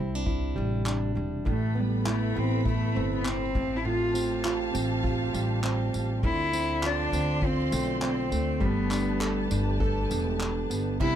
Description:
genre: acoustic pop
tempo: 101 BPM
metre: 4/4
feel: swing 60% on 16ths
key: unclear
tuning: A4 = 440 Hz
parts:
  - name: fingerpicked plugged-in steel-string acoustic guitar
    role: accompaniment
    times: 0.0-11.2 s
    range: A2 to A4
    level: -30 LUFS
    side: right 3 dB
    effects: none
  - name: upright bass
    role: bass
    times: 0.0-11.2 s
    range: E1 to D2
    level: -30 LUFS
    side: equal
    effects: none
  - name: unplugged drum kit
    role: drums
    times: 0.3-11.2 s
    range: crash cymbal, handclaps, kick drum, tambourine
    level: -32 LUFS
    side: equal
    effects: none
  - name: warm cello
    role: melody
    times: 1.5-11.2 s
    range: G3 to F4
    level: -30 LUFS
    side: left 2 dB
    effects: none
  - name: warm studio string section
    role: sustained chords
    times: 1.5-11.2 s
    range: F3 to C6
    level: -38 LUFS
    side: equal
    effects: none
room: little or no reverb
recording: close, detailed microphones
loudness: -25 LUFS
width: side -10 dB against mid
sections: 0.0-11.0 A section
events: none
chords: 0.0 Cadd9; 1.5 Amadd9; 3.6 Fadd9/A; 6.2 Dm7; 8.6 Gadd9

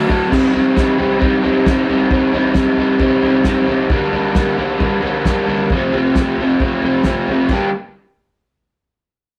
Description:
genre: garage rock duo or trio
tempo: 134 BPM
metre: 4/4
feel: straight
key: G minor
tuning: A4 = 444 Hz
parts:
  - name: crunchy overdriven guitar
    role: riff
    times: 0.0-7.7 s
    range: F2 to G4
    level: -16 LUFS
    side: equal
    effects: none
  - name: cloth-damped thuddy drum kit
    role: drums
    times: 0.1-7.6 s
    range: crash cymbal, kick drum, snare drum, toms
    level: -23 LUFS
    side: equal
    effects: none
room: moderate studio reverb, RT60 0.7 s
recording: rough rehearsal-room recording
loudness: -16 LUFS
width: mono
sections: 0.3-7.5 A section; 7.5-9.3 B section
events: none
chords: 0.3 Cm; 3.9 Gm; 5.7 F; 7.5 Gm

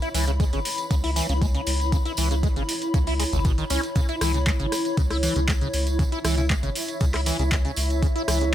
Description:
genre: acid house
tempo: 118 BPM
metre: 4/4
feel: straight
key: C# minor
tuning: A4 = 439 Hz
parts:
  - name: liquid acid bass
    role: riff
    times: 0.0-8.5 s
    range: C#2 to E4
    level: -29 LUFS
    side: equal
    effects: phaser, overdrive, analog chorus, sidechain pumping, digital delay
  - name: booming analog drum machine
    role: drums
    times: 0.0-8.5 s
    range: handclaps, hi-hat, rim click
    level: -29 LUFS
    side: equal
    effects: none
  - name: tambourine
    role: percussion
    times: 0.0-8.5 s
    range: none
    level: -35 LUFS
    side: right 4 dB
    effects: none
  - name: granular cloud pad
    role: texture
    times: 0.0-8.5 s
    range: E4 to B5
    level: -29 LUFS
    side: left 1 dB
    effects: built-in reverb, sidechain pumping
  - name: round analog bass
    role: bass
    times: 0.1-8.5 s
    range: G#1 to C#2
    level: -25 LUFS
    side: equal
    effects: tube saturation, sidechain pumping
  - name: electronic kick drum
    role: drums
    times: 0.4-8.1 s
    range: none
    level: -23 LUFS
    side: equal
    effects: overdrive
  - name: breathy alto saxophone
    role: melody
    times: 6.2-6.5 s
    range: E4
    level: -33 LUFS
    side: equal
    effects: digital delay
room: light reverb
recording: none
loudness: -21 LUFS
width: side -12 dB against mid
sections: 0.0-8.5 A section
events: none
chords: 0.0 C#m7

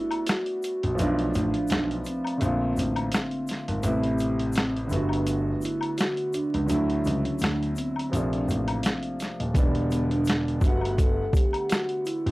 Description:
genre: lo-fi hip hop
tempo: 84 BPM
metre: 4/4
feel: swing 56% on 16ths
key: unclear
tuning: A4 = 440 Hz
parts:
  - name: vibraphone with soft mallets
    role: melody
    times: 0.0-12.3 s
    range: B3 to A4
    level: -29 LUFS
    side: right 1 dB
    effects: low-pass filter
  - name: warm upright piano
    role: accompaniment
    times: 0.0-12.3 s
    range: C3 to F#5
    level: -31 LUFS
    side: equal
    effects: low-pass filter
  - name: boom bap sampler-style drum kit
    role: drums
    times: 0.1-12.3 s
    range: hi-hat, kick drum, snare drum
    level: -26 LUFS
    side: equal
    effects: vintage 12-bit sampler grit
  - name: woodblock and egg shaker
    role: percussion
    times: 0.1-12.2 s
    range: none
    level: -37 LUFS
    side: left 4 dB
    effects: none
  - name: dark concert grand piano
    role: bass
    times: 0.8-12.3 s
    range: Eb1 to D2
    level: -28 LUFS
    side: equal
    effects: tube saturation
room: little or no reverb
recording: dry, gritty hardware recording, vinyl crackle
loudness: -23 LUFS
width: side -19 dB against mid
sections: 0.0-12.3 A section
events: break 0.0-9.6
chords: 0.0 Gmaj9; 1.0 Bm7b5; 2.4 Bbmaj9; 3.8 Am7; 4.9 Gmaj9; 6.7 Dmaj9; 8.1 Bbmaj9; 9.6 Em7; 10.6 Gmaj9

